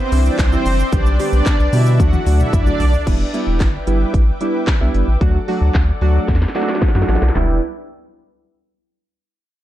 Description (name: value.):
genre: dance-pop.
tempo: 112 BPM.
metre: 4/4.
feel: straight.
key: E minor.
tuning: A4 = 440 Hz.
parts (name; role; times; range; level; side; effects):
supersaw pad; melody; 0.0-2.9 s; C4 to F#5; -22 LUFS; right 1 dB; sidechain pumping, digital delay.
soft supersaw; sustained chords; 0.0-7.6 s; E4 to D6; -28 LUFS; equal; sidechain pumping.
warm analog keys; accompaniment; 0.1-7.6 s; D3 to A5; -22 LUFS; right 2 dB; chorus, sidechain pumping.
round analog bass; bass; 0.1-7.6 s; E1 to B2; -15 LUFS; equal; sidechain pumping.
house drum kit; drums; 0.1-7.5 s; crash cymbal, handclaps, hi-hat, kick drum, shaker, snare drum, toms; -18 LUFS; equal; none.
room: little or no reverb.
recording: dark, warm production, low-pass filter.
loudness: -14 LUFS.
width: side -13 dB against mid.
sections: 0.0-3.1 A section; 3.1-7.4 B section; 7.4-9.5 C section.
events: drop 0.0-3.1; drum fill 2.0-3.1, 6.3-7.4; synth keys fill 6.3-7.4.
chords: 0.0 Cadd9; 0.9 G/B; 2.0 D; 3.1 Em7; 5.2 D; 7.4 Em7.